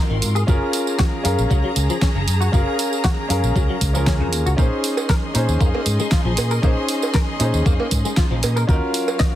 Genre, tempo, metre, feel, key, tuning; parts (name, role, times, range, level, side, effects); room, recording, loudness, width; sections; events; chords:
nu-disco, nu disco; 117 BPM; 4/4; straight; Bb minor; A4 = 440 Hz
clear grand piano; accompaniment; 0.0-9.4 s; C4 to F5; -24 LUFS; equal; sidechain pumping, dub echo
clear symphonic string section; sustained chords; 0.0-9.4 s; Gb3 to C6; -29 LUFS; left 1 dB; sidechain pumping
direct-recorded clean electric guitar; riff; 0.0-9.2 s; Db3 to Eb5; -28 LUFS; left 3 dB; ensemble chorus, dub echo
fingered electric bass with an envelope filter; bass; 0.1-8.8 s; Gb1 to Bb2; -20 LUFS; equal
pop drum kit; drums; 0.2-9.3 s; hi-hat, snare drum, tambourine; -25 LUFS; right 2 dB
electronic kick drum; drums; 0.5-9.3 s; -19 LUFS; equal
cowbell; percussion; 5.0-9.2 s; -27 LUFS; right 5 dB
light reverb, digital ambience; heavily compressed radio sound; -17 LUFS; side -12 dB against mid
0.0-9.4 A section
0.5 Gbmaj9; 4.6 Bbm11; 8.7 Ebm9